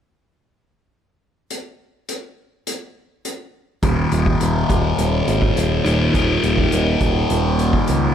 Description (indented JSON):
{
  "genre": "psychedelic rock",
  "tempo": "104 BPM",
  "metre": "4/4",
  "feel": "straight",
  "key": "unclear",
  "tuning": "A4 = 439 Hz",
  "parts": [
    { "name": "soft-mallet drum kit", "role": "drums", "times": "1.5-8.0 s", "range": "hi-hat, kick drum", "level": "-23 LUFS", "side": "equal", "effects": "none" },
    { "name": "thick fuzz guitar", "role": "riff", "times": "3.8-8.1 s", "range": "Eb2 to Eb3", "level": "-18 LUFS", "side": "left 1 dB", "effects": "distortion, phaser, analog delay" },
    { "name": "growling picked electric bass", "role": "bass", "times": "3.8-8.1 s", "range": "Eb1 to Db2", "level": "-20 LUFS", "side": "equal", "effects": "overdrive" }
  ],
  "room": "light reverb, small room ambience",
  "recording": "echo-heavy mix",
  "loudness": "-16 LUFS",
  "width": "side -9 dB against mid",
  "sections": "1.5-3.8 A section; 3.8-8.1 B section",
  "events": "none",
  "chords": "1.5 N.C.; 3.8 Eb5"
}